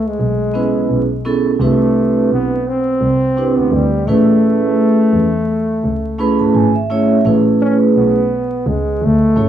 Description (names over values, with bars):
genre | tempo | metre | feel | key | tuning
hip hop, jazz-hop | 85 BPM | 4/4 | swing 58% on 16ths | A major | A4 = 441 Hz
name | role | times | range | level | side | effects
mellow trombone | melody | 0.0-9.5 s | G3 to C#4 | -17 LUFS | left 2 dB | cassette tape, analog delay
dark double bass | bass | 0.0-9.5 s | G#1 to E2 | -20 LUFS | equal | none
vibraphone with soft mallets | accompaniment | 0.5-9.5 s | A3 to B5 | -14 LUFS | right 3 dB | cassette tape
room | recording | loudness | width
moderate spring reverb, RT60 1.1 s, small room ambience | home recording on cassette, vinyl crackle, studio ambience | -12 LUFS | side -10 dB against mid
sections
0.0-7.2 A section; 7.2-9.5 B section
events
vibraphone fill 5.8-7.2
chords
0.0 Amaj9; 1.6 Cmaj9; 4.1 Amaj9